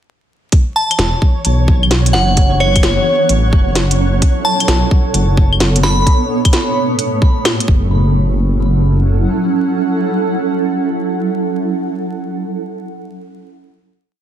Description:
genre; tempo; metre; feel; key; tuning
future garage; 130 BPM; 4/4; swing 67% on 16ths; F# phrygian; A4 = 440 Hz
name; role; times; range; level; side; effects
granular cloud pad; sustained chords; 1.3-12.0 s; A2 to F#5; -18 LUFS; right 2 dB; built-in reverb, vintage 12-bit sampler grit, sidechain pumping
electronic kick drum; drums; 0.5-7.8 s; none; -11 LUFS; equal; small room ambience
organic electronic drum kit; drums; 0.5-7.7 s; claves, hi-hat, snare drum; -17 LUFS; equal; small room ambience
flickering grainy texture; texture; 0.9-6.1 s; C#5; -26 LUFS; right 2 dB; built-in reverb
glassy synth bell; melody; 0.8-6.1 s; C#5 to B5; -18 LUFS; equal; chorus, tape echo
dark detuned saw bass; bass; 1.0-9.3 s; E1 to B1; -14 LUFS; equal; sidechain pumping
room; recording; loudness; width
light reverb, digital ambience; dense, heavily limited modern master, vinyl crackle; -12 LUFS; side -10 dB against mid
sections
0.5-7.9 groove; 7.9-11.6 final chord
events
none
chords
0.5 Em7; 2.4 F#m7; 4.2 Bm7; 6.1 A7; 7.7 F#5; 7.9 F#m7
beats
| 0.53 0.99 1.45 1.91 | 2.38 2.84 3.30 3.76 | 4.22 4.68 5.14 5.61 | 6.07 6.53 6.99 7.45 | 7.91 8.38 8.84 9.30 | 9.76 10.22 10.68 11.14

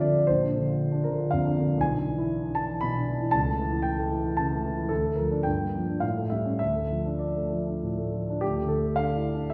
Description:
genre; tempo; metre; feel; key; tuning
classical, romantic character piece for solo piano; 98-121 BPM; 3/4; rubato; D minor; A4 = 440 Hz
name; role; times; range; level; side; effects
warm grand piano; solo; 0.0-9.5 s; Bb1 to B5; -27 LUFS; equal; none
room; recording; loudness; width
wet recital hall reverb, RT60 1.4 s; heard from further back in the room; -27 LUFS; mono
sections
0.0-8.4 A section; 8.4-9.5 A section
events
none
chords
0.3 Bb; 1.8 E7/B; 3.3 A/C#; 4.9 Dm; 5.4 Gm7; 6.0 A7; 6.6 Dm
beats
| 0.27 0.78 1.30 | 1.80 2.30 2.81 | 3.33 3.84 4.37 | 4.90 5.45 6.02 | 6.61 7.21 7.82 | 8.41 8.97 9.51

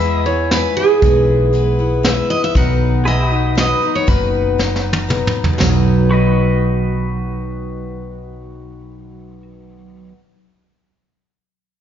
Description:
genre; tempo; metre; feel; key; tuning
honky-tonk and classic country; 118 BPM; 3/4; straight; B major; A4 = 441 Hz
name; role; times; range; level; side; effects
picked steel-string acoustic guitar; melody; 0.0-5.1 s; G#4 to F#5; -18 LUFS; right 4 dB; none
picked steel-string acoustic guitar; accompaniment; 0.0-10.2 s; B2 to B4; -21 LUFS; left 7 dB; none
pedal steel guitar; sustained chords; 0.0-9.4 s; F#4 to E5; -25 LUFS; left 1 dB; none
woody fretless electric bass; bass; 0.0-10.1 s; F#1 to E2; -18 LUFS; equal; none
vintage brush drum kit; drums; 0.0-5.7 s; hi-hat, kick drum, snare drum, splash cymbal, toms; -18 LUFS; equal; none
electric guitar through a small old amp; second line; 5.6-10.1 s; F#3; -22 LUFS; right 8 dB; tape echo
room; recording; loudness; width
moderate recital hall reverb, RT60 1.7 s; heard from further back in the room, nothing above 7.5 kHz; -13 LUFS; side -9 dB against mid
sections
0.0-5.6 A section; 5.6-8.7 B section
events
drum fill 4.6-5.6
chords
0.0 E; 2.5 B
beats
0.00 0.51 | 1.02 1.53 2.04 | 2.55 3.06 3.57 | 4.08 4.58 5.09 | 5.60 6.11 6.62 | 7.13 7.64 8.15

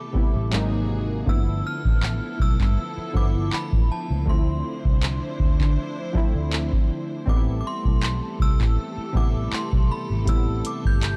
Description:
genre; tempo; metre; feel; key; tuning
contemporary R&B; 80 BPM; 4/4; swing 54% on 16ths; A minor; A4 = 440 Hz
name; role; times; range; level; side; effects
synth chime; melody; 0.0-11.2 s; A5 to G6; -37 LUFS; equal; ensemble chorus, tremolo
warm analog keys; accompaniment; 0.0-11.2 s; C3 to G4; -32 LUFS; equal; chorus
warm studio string section; sustained chords; 0.0-11.2 s; E3 to C5; -37 LUFS; equal; none
vintage muted fingered electric bass; bass; 0.1-11.2 s; G1 to D3; -28 LUFS; equal; none
booming analog drum machine; drums; 0.2-11.2 s; handclaps, hi-hat, kick drum; -23 LUFS; equal; none
room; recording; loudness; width
digital ambience; dark, warm production; -23 LUFS; mono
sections
0.0-11.2 A section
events
none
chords
0.0 Am9; 0.5 G#9; 1.3 G13; 4.3 Dm9; 7.3 Am9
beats
0.53 | 1.27 2.02 2.77 3.52 | 4.28 5.03 5.78 6.53 | 7.28 8.03 8.78 9.53 | 10.28 11.03

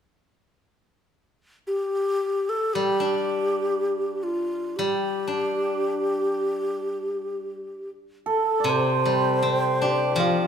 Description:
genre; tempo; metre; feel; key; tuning
chinese traditional, Chinese chamber ensemble; free time; none; none; G shang mode; A4 = 439 Hz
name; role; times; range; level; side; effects
breathy mellow xiao; melody; 1.7-10.5 s; F4 to C5; -25 LUFS; equal; none
steel-string zither; accompaniment; 2.8-10.5 s; C3 to D4; -26 LUFS; left 1 dB; none
hammered dulcimer; second line; 8.3-10.5 s; F4 to D5; -24 LUFS; right 5 dB; none
room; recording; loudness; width
wet recital hall reverb, RT60 1.5 s; minimal, uncompressed stereo recording; -22 LUFS; side -8 dB against mid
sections
1.2-8.7 A section; 8.7-10.5 B section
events
none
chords
none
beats
free time

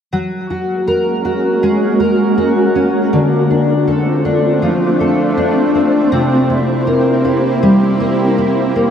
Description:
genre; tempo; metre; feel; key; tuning
dream pop; 80 BPM; 4/4; straight; unclear; A4 = 440 Hz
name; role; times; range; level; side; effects
granular cloud pad; sustained chords; 0.7-8.9 s; Ab3 to C5; -15 LUFS; right 1 dB; built-in reverb, shimmer reverb
fingerpicked twelve-string acoustic guitar; arpeggios; 0.1-8.9 s; C3 to Bb4; -14 LUFS; left 1 dB; analog chorus, digital delay, shimmer reverb
room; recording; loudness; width
wet huge ambient reverb, RT60 7.9 s; none; -12 LUFS; side -8 dB against mid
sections
0.1-8.9 A section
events
none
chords
0.1 Gbadd9; 3.1 Dm7; 6.1 C7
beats
| 0.13 0.88 1.63 2.38 | 3.13 3.88 4.63 5.38 | 6.13 6.88 7.63 8.38

